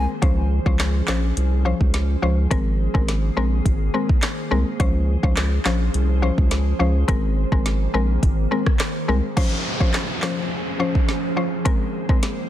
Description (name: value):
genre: dancehall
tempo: 105 BPM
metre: 4/4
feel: straight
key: Db major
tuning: A4 = 440 Hz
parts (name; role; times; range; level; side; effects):
- mallet-like synth pluck; accompaniment; 0.0-12.5 s; F3 to C5; -25 LUFS; left 3 dB; chorus, sidechain pumping
- glassy FM pad; sustained chords; 0.0-12.5 s; Eb3 to C5; -29 LUFS; equal; ensemble chorus, built-in reverb, sidechain pumping
- saturated sub bass; bass; 0.0-9.2 s; Ab1 to Db2; -20 LUFS; equal; none
- afro-pop drum kit; drums; 0.2-12.4 s; crash cymbal, handclaps, hi-hat, kick drum, rim click, snare drum; -21 LUFS; equal; none
- downlifter; sound effects; 9.4-12.5 s; none; -29 LUFS; equal; none
room: digital ambience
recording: dense, heavily limited modern master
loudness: -18 LUFS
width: side -12 dB against mid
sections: 0.0-9.4 A section; 9.4-12.5 B section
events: none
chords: 0.2 Dbmaj7; 2.5 Abadd9; 4.8 Dbmaj7; 7.1 Abadd9; 9.4 Dbmaj7; 11.7 Abadd9